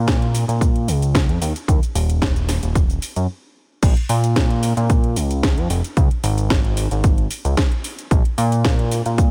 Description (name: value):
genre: nu-disco, nu disco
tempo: 112 BPM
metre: 4/4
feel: straight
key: Bb minor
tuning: A4 = 440 Hz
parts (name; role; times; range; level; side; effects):
- fat analog bass; bass; 0.0-9.3 s; Eb1 to Bb2; -21 LUFS; equal; sidechain pumping
- electronic kick drum; drums; 0.1-9.3 s; none; -20 LUFS; equal; small room ambience
- house drum kit; drums; 0.1-9.3 s; crash cymbal, hi-hat, shaker, snare drum; -28 LUFS; equal; small room ambience
room: little or no reverb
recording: none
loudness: -19 LUFS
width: mono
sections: 0.0-3.8 A section; 3.8-9.3 B section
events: stop 3.3-3.8; drop 3.8-9.3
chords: none